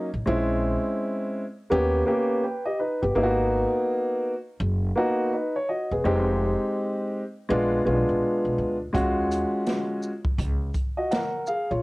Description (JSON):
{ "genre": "hip hop, jazz-hop", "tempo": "83 BPM", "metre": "4/4", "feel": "swing 63% on 16ths", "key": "unclear", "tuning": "A4 = 440 Hz", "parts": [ { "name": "dark baby grand piano", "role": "accompaniment", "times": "0.0-11.8 s", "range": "Ab3 to G5", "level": "-23 LUFS", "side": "equal", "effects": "none" }, { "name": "upright bass", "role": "bass", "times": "0.1-11.8 s", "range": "Fb1 to Eb2", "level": "-27 LUFS", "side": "equal", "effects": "none" }, { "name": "open jazz drum kit", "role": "drums", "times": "8.9-11.7 s", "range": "hi-hat, kick drum, shaker, snare drum", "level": "-28 LUFS", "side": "equal", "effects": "none" } ], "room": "studio reverb", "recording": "home recording on cassette", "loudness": "-23 LUFS", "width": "side -21 dB against mid", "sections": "0.0-11.8 A section", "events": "none", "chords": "0.3 Bbm7b5; 1.7 Eb7b13; 3.2 Abm7; 6.1 Fm9; 7.5 Bb7b9; 8.9 Ebm11" }